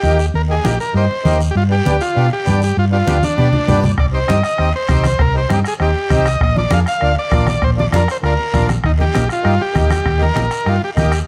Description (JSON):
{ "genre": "latin, cumbia", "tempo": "198 BPM", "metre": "4/4", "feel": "straight", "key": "unclear", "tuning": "A4 = 441 Hz", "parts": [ { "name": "combo organ", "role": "melody", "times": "0.0-11.2 s", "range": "D4 to F5", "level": "-22 LUFS", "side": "equal", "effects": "none" }, { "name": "accordion", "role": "accompaniment", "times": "0.0-11.1 s", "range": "Bb3 to Ab4", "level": "-24 LUFS", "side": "equal", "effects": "none" }, { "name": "hollow-body short-scale fingered electric bass", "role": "bass", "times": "0.0-11.2 s", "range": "Bb1 to B2", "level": "-19 LUFS", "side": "equal", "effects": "none" }, { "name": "congas", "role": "percussion", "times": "0.0-11.1 s", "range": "none", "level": "-23 LUFS", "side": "equal", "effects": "none" }, { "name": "guiro", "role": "percussion", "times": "0.0-11.3 s", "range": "none", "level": "-36 LUFS", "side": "equal", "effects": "none" }, { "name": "bombo", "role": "percussion", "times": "4.0-11.3 s", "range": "none", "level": "-23 LUFS", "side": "equal", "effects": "none" } ], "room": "light reverb", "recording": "none", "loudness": "-16 LUFS", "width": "mono", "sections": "0.0-11.3 A section", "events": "drum fill 3.2-4.0", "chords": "0.0 Eb; 1.6 G7; 4.0 Cm; 6.4 Bb; 8.8 Eb" }